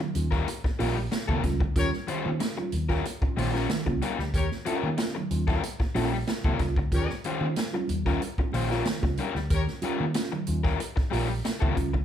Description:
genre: funk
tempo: 93 BPM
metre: 4/4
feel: straight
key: Eb mixolydian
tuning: A4 = 441 Hz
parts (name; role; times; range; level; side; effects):
- crunchy overdriven guitar; accompaniment; 0.0-12.0 s; G3 to C5; -31 LUFS; left 6 dB; none
- mellow tine electric piano; stabs; 0.0-11.9 s; Eb3 to F4; -33 LUFS; right 3 dB; phaser
- congas; percussion; 0.0-11.9 s; none; -38 LUFS; right 2 dB; none
- swinging big-band drum kit; drums; 0.1-12.0 s; hi-hat, kick drum, snare drum; -29 LUFS; equal; none
- vintage muted fingered electric bass; bass; 0.2-12.0 s; Bb1 to Eb3; -30 LUFS; right 1 dB; none
- clear horn section; second line; 1.8-9.6 s; G4 to Db5; -32 LUFS; left 6 dB; none
room: light reverb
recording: band playing live in one room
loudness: -25 LUFS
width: side -10 dB against mid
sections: 0.0-12.0 A section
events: none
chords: 0.0 Eb9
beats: 0.47 1.12 | 1.76 2.41 3.05 3.70 | 4.34 4.99 5.63 6.28 | 6.92 7.57 8.21 8.86 | 9.51 10.15 10.80 11.44

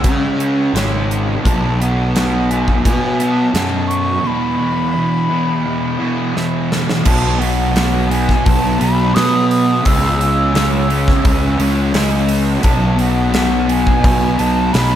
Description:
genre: rock, shoegaze and dream pop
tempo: 86 BPM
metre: 4/4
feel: straight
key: unclear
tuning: A4 = 440 Hz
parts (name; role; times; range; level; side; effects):
- fuzz guitar; riff; 0.0-15.0 s; E2 to C#4; -17 LUFS; equal; distortion, lush chorus
- fuzz picked electric bass; bass; 0.0-15.0 s; G#1 to C#3; -18 LUFS; equal; overdrive
- gated 80s drum kit; drums; 0.0-14.9 s; crash cymbal, hi-hat, kick drum, snare drum; -18 LUFS; equal; none
- bright baroque flute; melody; 1.5-15.0 s; F#5 to E6; -21 LUFS; equal; tape echo
room: moderate huge ambient reverb, RT60 4.3 s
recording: dreamy mix soaked in reverb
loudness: -13 LUFS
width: side -10 dB against mid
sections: 0.0-7.1 A section; 7.1-15.0 A section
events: drum fill 6.4-7.1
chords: 0.0 C#5; 1.4 B5; 4.2 E5; 7.1 B5; 9.8 C#m; 12.6 B5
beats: 0.04 0.74 | 1.44 2.14 2.84 3.55 | 4.25 4.95 5.65 6.35 | 7.05 7.75 8.45 9.15 | 9.85 10.55 11.25 11.95 | 12.64 13.34 14.04 14.74

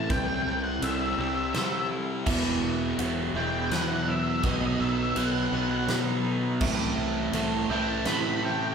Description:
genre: post-rock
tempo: 83 BPM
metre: 3/4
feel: straight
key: E minor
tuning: A4 = 441 Hz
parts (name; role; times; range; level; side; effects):
- octave-fuzz lead guitar; melody; 0.0-8.7 s; D#5 to B5; -31 LUFS; equal; distortion
- glassy FM pad; sustained chords; 0.0-8.7 s; D#3 to E5; -40 LUFS; right 4 dB; none
- felt-muted upright piano; arpeggios; 0.0-8.7 s; A4 to F#5; -43 LUFS; right 2 dB; none
- semi-hollow electric guitar; arpeggios; 0.0-8.7 s; B2 to C5; -39 LUFS; equal; none
- fuzz guitar; riff; 0.0-8.7 s; E2 to C4; -30 LUFS; left 3 dB; distortion
- fuzz fingered electric bass; bass; 0.0-8.7 s; E1 to C3; -34 LUFS; right 1 dB; overdrive
- huge arena drum kit; drums; 0.1-8.2 s; crash cymbal, kick drum, ride cymbal, snare drum; -33 LUFS; right 1 dB; none
- raw garage guitar; riff; 2.3-8.7 s; E2 to B3; -31 LUFS; right 8 dB; overdrive, phaser
room: wet large studio reverb, RT60 1.4 s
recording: band playing live in one room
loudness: -24 LUFS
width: side -6 dB against mid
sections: 0.0-8.7 A section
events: none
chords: 0.1 C; 2.3 Esus2; 4.4 B; 6.6 Amadd9/C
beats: | 0.10 0.82 1.55 | 2.27 2.99 3.72 | 4.44 5.17 5.89 | 6.62 7.34 8.06

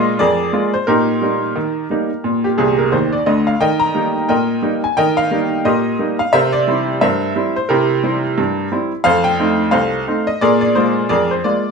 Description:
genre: ragtime piano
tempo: 88 BPM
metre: 2/4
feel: swing 59% on 16ths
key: Eb major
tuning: A4 = 440 Hz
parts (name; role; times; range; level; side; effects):
- bright upright piano; solo; 0.0-11.7 s; C2 to Bb5; -14 LUFS; equal; none
room: wet club reverb, RT60 0.6 s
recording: heard from further back in the room, nothing above 10.7 kHz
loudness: -14 LUFS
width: side -5 dB against mid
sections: 0.0-11.7 A section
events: upright piano fill 2.6-3.6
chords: 0.0 Bb7; 0.9 Eb/Bb; 2.2 Bb; 3.6 Eb; 6.3 C7; 9.1 F7; 10.4 Bb5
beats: 0.20 | 0.88 1.56 | 2.24 2.93 | 3.61 4.29 | 4.98 5.66 | 6.34 7.02 | 7.70 8.38 | 9.06 9.74 | 10.42 11.10

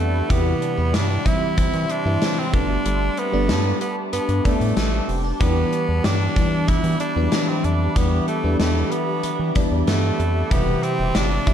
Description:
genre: 1980s-style pop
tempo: 94 BPM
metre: 4/4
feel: straight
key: E minor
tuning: A4 = 436 Hz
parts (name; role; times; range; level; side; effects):
- raspy tenor saxophone; melody; 0.0-11.5 s; A3 to E4; -26 LUFS; right 1 dB; none
- FM electric piano; accompaniment; 0.0-11.5 s; C3 to E4; -24 LUFS; left 2 dB; chorus, phaser
- ethereal airy pad; sustained chords; 0.0-11.5 s; G4 to E6; -30 LUFS; right 1 dB; ensemble chorus, built-in reverb
- clean electric guitar; riff; 0.0-11.5 s; G3 to A4; -31 LUFS; right 6 dB; analog chorus
- round analog bass; bass; 0.0-11.4 s; E1 to E3; -22 LUFS; equal; none
- gated 80s drum kit; drums; 0.3-11.5 s; hi-hat, kick drum, snare drum; -22 LUFS; equal; none
room: moderate digital room reverb, RT60 1.1 s, small room reverb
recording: dark, warm production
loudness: -18 LUFS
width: side -9 dB against mid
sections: 0.0-11.5 A section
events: none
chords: 0.3 C/E; 2.5 Gadd9; 5.4 Em7; 10.5 C/E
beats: | 0.30 0.94 1.58 2.22 | 2.85 3.49 4.13 4.77 | 5.41 6.05 6.68 7.32 | 7.96 8.60 9.24 9.88 | 10.52 11.15

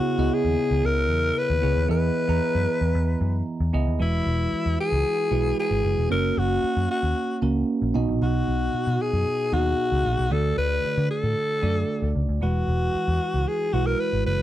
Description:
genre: 1980s-style pop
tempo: 114 BPM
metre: 4/4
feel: straight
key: unclear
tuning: A4 = 439 Hz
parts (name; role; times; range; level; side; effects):
- breathy alto saxophone; melody; 0.0-14.4 s; E4 to B4; -25 LUFS; left 2 dB; slapback echo
- bell-like tine electric piano; accompaniment; 0.0-14.4 s; B2 to A#5; -27 LUFS; right 3 dB; phaser
- vintage muted picked electric bass; bass; 0.2-14.4 s; E1 to D3; -24 LUFS; equal; none
room: light reverb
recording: dry, close 1970s-style studio recording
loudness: -21 LUFS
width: side -13 dB against mid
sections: 0.0-4.0 A section; 4.0-14.4 B section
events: none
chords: 0.0 C#m7; 1.9 Emaj7; 4.0 Eadd9; 6.1 F#; 8.0 B; 10.3 D; 12.4 Eadd9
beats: 0.32 0.84 1.37 | 1.90 2.42 2.95 3.48 | 4.00 4.53 5.06 5.58 | 6.11 6.63 7.16 7.69 | 8.21 8.74 9.27 9.79 | 10.32 10.85 11.37 11.90 | 12.42 12.95 13.48 14.00

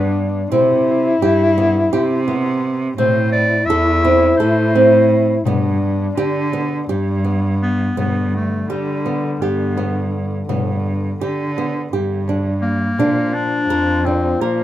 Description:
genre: contemporary instrumental, chamber music in an uneven meter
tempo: 169 BPM (eighths)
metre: 7/8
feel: straight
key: G mixolydian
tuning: A4 = 439 Hz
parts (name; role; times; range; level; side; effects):
- bright clarinet; melody; 0.0-14.6 s; G3 to E5; -20 LUFS; left 2 dB; none
- warm French horn; second line; 0.0-14.6 s; D3 to E4; -21 LUFS; left 3 dB; none
- flamenco guitar; arpeggios; 0.0-14.6 s; B3 to Bb4; -20 LUFS; right 2 dB; none
- rich cello; bass; 0.0-14.6 s; E2 to D3; -20 LUFS; right 1 dB; none
- frame drum; percussion; 0.5-14.4 s; none; -27 LUFS; left 4 dB; none
room: wet booth ambience, RT60 0.2 s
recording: heard from further back in the room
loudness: -15 LUFS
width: side -13 dB against mid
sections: 0.0-8.0 A section; 8.0-14.6 B section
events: none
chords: 0.0 G; 0.5 C; 3.0 Am; 5.5 G; 13.0 Bb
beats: 0.16 | 0.52 0.87 1.22 1.57 1.92 2.27 2.63 | 2.98 3.33 3.68 4.04 4.39 4.75 5.10 | 5.46 5.81 6.17 6.53 6.89 7.25 7.61 | 7.97 8.34 8.70 9.05 9.41 9.77 10.13 | 10.49 10.85 11.21 11.56 11.92 12.28 12.63 | 12.98 13.34 13.70 14.05 14.41

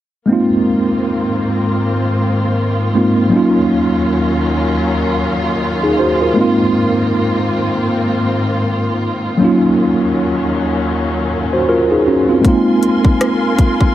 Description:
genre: contemporary R&B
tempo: 79 BPM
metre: 4/4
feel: swing 58% on 16ths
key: Ab mixolydian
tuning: A4 = 439 Hz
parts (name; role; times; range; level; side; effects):
- mellow tine electric piano; accompaniment; 0.3-13.9 s; Gb3 to C5; -14 LUFS; right 1 dB; medium stereo tremolo
- warm studio string section; sustained chords; 0.3-13.9 s; Eb2 to C6; -18 LUFS; left 1 dB; none
- trap drum kit; drums; 12.4-13.9 s; hi-hat, kick drum, rim click; -13 LUFS; equal; none
room: light reverb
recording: none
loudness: -12 LUFS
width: side -13 dB against mid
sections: 0.3-12.4 A section; 12.4-13.9 B section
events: none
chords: 0.3 Ab69; 3.3 Ebm9; 6.4 Ab69; 9.4 Ebm9; 12.4 Ab69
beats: | 0.29 1.05 1.81 2.57 | 3.33 4.09 4.85 5.61 | 6.37 7.13 7.89 8.65 | 9.41 10.17 10.93 11.69 | 12.45 13.21

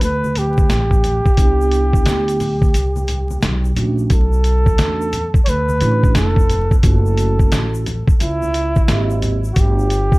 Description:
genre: hip hop, jazz-hop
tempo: 88 BPM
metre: 4/4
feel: swing 64% on 16ths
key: B minor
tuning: A4 = 443 Hz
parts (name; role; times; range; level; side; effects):
- breathy flugelhorn; melody; 0.0-10.2 s; E4 to C#5; -21 LUFS; equal; tape echo
- upright bass; bass; 0.0-10.2 s; E#1 to E2; -18 LUFS; equal; none
- lo-fi sampler-style drum kit; drums; 0.0-10.2 s; hi-hat, kick drum, snare drum; -15 LUFS; equal; none
- tube shaker and congas; percussion; 0.0-10.2 s; none; -30 LUFS; left 1 dB; none
- vibraphone with soft mallets; accompaniment; 1.4-9.8 s; A3 to D#5; -24 LUFS; right 4 dB; none
room: little or no reverb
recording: dark, warm production, vinyl crackle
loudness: -14 LUFS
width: side -22 dB against mid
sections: 0.0-4.1 A section; 4.1-10.2 B section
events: break 2.7-4.1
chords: 0.0 G; 1.4 Cmaj9; 3.4 Bm9; 6.8 F#m7; 8.9 G#maj7; 9.6 Gmaj7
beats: 0.01 0.70 | 1.38 2.06 2.74 3.42 | 4.11 4.79 5.47 6.15 | 6.83 7.51 8.20 8.88 | 9.56

